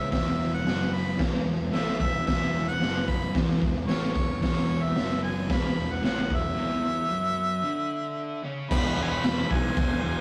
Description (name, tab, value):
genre	garage rock duo or trio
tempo	112 BPM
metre	4/4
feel	straight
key	E mixolydian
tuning	A4 = 440 Hz
part	clear harmonica	melody	0.0-10.2 s	C#5 to B5	-33 LUFS	equal	overdrive
part	fuzz guitar	riff	0.0-10.2 s	E2 to D4	-33 LUFS	equal	distortion
part	fuzz picked electric bass	bass	0.0-10.2 s	E1 to C#2	-36 LUFS	equal	overdrive
part	raw garage drum kit	drums	0.1-9.9 s	crash cymbal, hi-hat, kick drum, snare drum	-30 LUFS	equal	none
room	moderate stone room reverb, RT60 1.1 s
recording	rough rehearsal-room recording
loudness	-27 LUFS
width	mono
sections	0.0-8.7 A section; 8.7-10.2 B section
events	break 6.6-8.7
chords	0.0 E5; 8.7 E